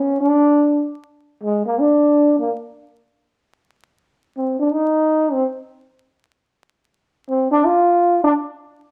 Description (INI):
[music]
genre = jazz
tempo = free time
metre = none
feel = none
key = unclear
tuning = A4 = 440 Hz
[part]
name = breathy trombone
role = solo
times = 0.0-8.3 s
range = Ab3 to F4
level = -17 LUFS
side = equal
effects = none
[sound]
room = moderate large studio reverb, RT60 0.9 s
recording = vinyl crackle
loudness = -18 LUFS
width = mono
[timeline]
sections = 0.0-1.0 A section; 1.0-8.9 B section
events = trombone solo 1.0-8.9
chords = none